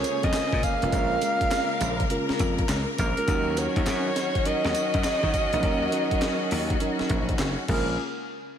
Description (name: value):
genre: R&B, new jack swing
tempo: 102 BPM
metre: 4/4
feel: swing 65% on 16ths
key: Bb minor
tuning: A4 = 440 Hz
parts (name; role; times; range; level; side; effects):
- growling alto saxophone; melody; 0.0-8.0 s; Bb4 to F5; -28 LUFS; right 1 dB; none
- mellow FM electric piano; accompaniment; 0.0-8.0 s; Gb3 to Bb4; -31 LUFS; right 1 dB; chorus
- clear symphonic string section; sustained chords; 0.0-8.0 s; Db3 to Bb4; -31 LUFS; left 1 dB; none
- slap bass; bass; 0.0-8.0 s; F1 to Eb3; -29 LUFS; equal; none
- breakbeat sampler-style drum kit; drums; 0.0-7.9 s; crash cymbal, handclaps, hi-hat, kick drum, snare drum, tambourine; -28 LUFS; equal; overdrive
room: moderate lush hall reverb, RT60 2.3 s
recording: dreamy mix soaked in reverb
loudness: -22 LUFS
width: side -9 dB against mid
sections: 0.0-8.0 A section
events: none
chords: 0.0 Bbm7; 3.3 Ebm7; 7.7 Bbm7; 8.0 N.C.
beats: 0.34 | 0.92 1.51 2.10 2.69 | 3.28 3.87 4.45 5.04 | 5.63 6.22 6.81 7.39 | 7.98